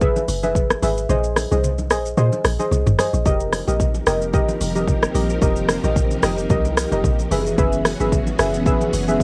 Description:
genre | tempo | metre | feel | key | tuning
amapiano | 111 BPM | 4/4 | swing 55% on 16ths | unclear | A4 = 440 Hz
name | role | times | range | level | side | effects
deep mellow chord stab | stabs | 0.0-9.2 s | G4 to Fb5 | -25 LUFS | equal | chorus, analog delay
deep log drum bass | bass | 0.0-9.2 s | F1 to Bb2 | -25 LUFS | equal | none
afro-pop drum kit | drums | 0.0-9.2 s | hi-hat, kick drum, rim click, shaker, toms | -23 LUFS | equal | cassette tape
congas | percussion | 0.0-9.2 s | none | -31 LUFS | equal | none
string machine, cellos | sustained chords | 3.3-9.2 s | Fb3 to Bb4 | -28 LUFS | equal | ensemble chorus, sidechain pumping
room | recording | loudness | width
light reverb | home recording on cassette | -19 LUFS | mono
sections
0.0-9.2 A section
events
kick muted 1.1-3.3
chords
0.0 Gb9sus4; 1.1 Bb9sus4; 3.3 F9sus4; 7.3 Gb9sus4

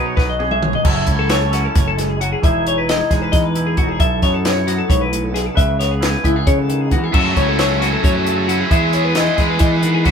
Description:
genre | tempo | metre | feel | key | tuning
math rock and midwest emo | 267 BPM (eighths) | 7/8 | straight | E major | A4 = 441 Hz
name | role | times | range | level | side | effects
twangy electric guitar | accompaniment | 0.0-10.1 s | G#2 to B4 | -23 LUFS | right 4 dB | spring reverb
twelve-string electric guitar | arpeggios | 0.0-10.1 s | E4 to E5 | -20 LUFS | left 5 dB | none
growling fingered electric bass | bass | 0.0-10.1 s | E1 to E3 | -20 LUFS | equal | overdrive
compact cocktail drum kit | drums | 0.2-10.1 s | crash cymbal, hi-hat, kick drum, snare drum, toms | -18 LUFS | equal | none
cranked stack guitar | riff | 7.1-10.1 s | F#2 to G#4 | -19 LUFS | equal | overdrive
room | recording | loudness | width
moderate studio reverb, RT60 0.6 s | band playing live in one room | -14 LUFS | side -7 dB against mid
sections
0.9-10.1 A section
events
drum fill 0.2-0.9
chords
0.0 B69; 0.9 F#m7; 2.4 Emaj7; 4.0 B7sus4; 5.6 C#m7; 7.1 F#m7; 8.7 Emaj7

